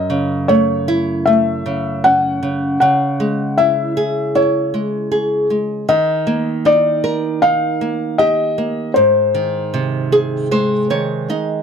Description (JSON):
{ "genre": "children's music, lullaby", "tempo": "78 BPM", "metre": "4/4", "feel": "straight", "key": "C# harmonic minor", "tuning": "A4 = 445 Hz", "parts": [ { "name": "felt-muted upright piano", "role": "melody", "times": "0.0-11.3 s", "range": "B#4 to F#5", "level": "-16 LUFS", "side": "left 2 dB", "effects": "none" }, { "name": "nylon-string guitar", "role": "accompaniment", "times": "0.0-11.6 s", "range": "F#2 to D#5", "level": "-18 LUFS", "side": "right 2 dB", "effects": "none" } ], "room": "light reverb", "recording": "none", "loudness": "-14 LUFS", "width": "side -7 dB against mid", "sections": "0.0-11.6 A section", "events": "nylon-string guitar fill 9.7-11.6", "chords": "0.0 F#m7; 2.8 C#m; 5.9 D#; 9.0 G#" }